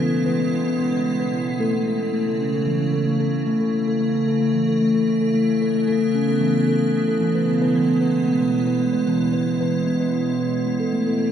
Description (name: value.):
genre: world meditative, meditative tuned percussion.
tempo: 225 BPM (eighths).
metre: 7/8.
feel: straight.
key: A major.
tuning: A4 = 445 Hz.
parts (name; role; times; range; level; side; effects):
icy glass pad; sustained chords; 0.0-11.3 s; B2 to E4; -24 LUFS; right 2 dB; chorus, built-in reverb.
steel tongue drum; arpeggios; 0.0-11.3 s; E3 to B4; -20 LUFS; equal; tape echo.
room: wet church reverb, RT60 3.2 s.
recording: none.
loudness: -18 LUFS.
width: side -9 dB against mid.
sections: 0.0-3.5 A section; 3.5-11.3 B section.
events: none.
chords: 0.0 E; 1.6 A; 7.2 E.